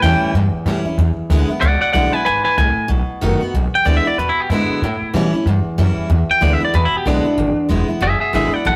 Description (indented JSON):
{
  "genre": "rockabilly",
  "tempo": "188 BPM",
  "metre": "4/4",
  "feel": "swing 59% on 8ths",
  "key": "E mixolydian",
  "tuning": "A4 = 440 Hz",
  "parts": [
    { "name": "twangy electric guitar", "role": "melody", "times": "0.0-8.8 s", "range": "D4 to G#5", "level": "-19 LUFS", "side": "equal", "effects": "none" },
    { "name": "picked steel-string acoustic guitar", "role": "accompaniment", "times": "0.0-8.8 s", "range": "E2 to F#4", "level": "-23 LUFS", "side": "equal", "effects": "none" },
    { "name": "upright bass", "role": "bass", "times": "0.0-8.8 s", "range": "E1 to B2", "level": "-20 LUFS", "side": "equal", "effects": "none" }
  ],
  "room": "moderate stone room reverb, RT60 1.4 s",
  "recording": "rough rehearsal-room recording, warm saturation",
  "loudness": "-17 LUFS",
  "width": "mono",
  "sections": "0.0-3.5 A section; 3.5-8.8 B section",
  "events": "clean electric guitar solo 0.0-3.5",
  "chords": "0.0 A7; 1.0 E7; 2.9 B7; 3.5 E7; 4.8 A7; 6.1 E7"
}